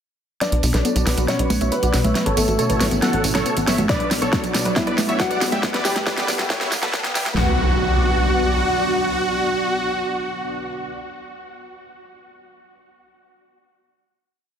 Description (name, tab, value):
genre	uplifting trance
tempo	138 BPM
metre	4/4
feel	straight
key	B minor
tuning	A4 = 440 Hz
part	dense compressed supersaw	melody	0.4-10.9 s	E4 to F#5	-24 LUFS	right 1 dB	sidechain pumping, low-pass filter, dub echo
part	dark grand piano	second line	0.4-10.9 s	A3 to G5	-27 LUFS	left 2 dB	dub echo
part	analog string pad	sustained chords	0.7-10.9 s	F#3 to F#5	-29 LUFS	equal	ensemble chorus, sidechain pumping
part	analog pluck	arpeggios	0.4-7.6 s	B2 to B4	-28 LUFS	left 2 dB	chorus, cassette tape, sidechain pumping, dub echo
part	big-room dance drum kit	drums	0.4-7.3 s	congas, hi-hat, snare drum, tambourine	-23 LUFS	right 1 dB	overdrive
part	riser and impact	sound effects	1.8-11.0 s	none	-29 LUFS	equal	none
part	tight sequencer bass	bass	0.5-8.6 s	A1 to E2	-23 LUFS	equal	sidechain pumping
part	big-room dance drum kit	drums	3.9-7.5 s	kick drum, snare drum	-25 LUFS	equal	overdrive
room	light reverb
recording	dense, heavily limited modern master, high-pass filter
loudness	-18 LUFS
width	side -8 dB against mid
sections	0.4-7.4 build; 7.4-10.8 final chord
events	build-up 0.4-7.4; drum fill 0.4-7.4; filter sweep on supersaw synth 0.4-7.4; filter sweep on synth pluck 0.4-7.4; filter sweep 0.4-7.4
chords	0.4 Bm; 2.2 F#m7/A; 3.9 Bm; 5.6 Em; 7.4 Bm